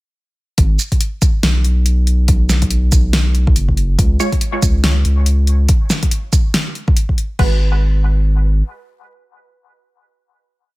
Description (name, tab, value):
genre	deep dubstep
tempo	141 BPM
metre	4/4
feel	swing 59% on 16ths, half-time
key	G# minor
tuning	A4 = 440 Hz
part	saturated sub bass	bass	0.6-8.6 s	F#1 to C#2	-13 LUFS	equal	none
part	deep house drum kit	drums	0.6-7.5 s	crash cymbal, hi-hat, shaker, snare drum	-19 LUFS	equal	none
part	electronic kick drum	drums	0.6-7.5 s	none	-14 LUFS	equal	none
part	filtered dub chord stab	stabs	4.2-4.3, 7.4-10.8 s	G#3 to C#5	-23 LUFS	right 1 dB	phaser, dub echo
room	little or no reverb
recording	none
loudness	-12 LUFS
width	side -20 dB against mid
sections	0.6-7.4 drop; 7.4-10.8 final chord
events	drop 0.6-7.4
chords	0.6 G#m7 (rootless); 4.0 N.C.; 7.4 G#m7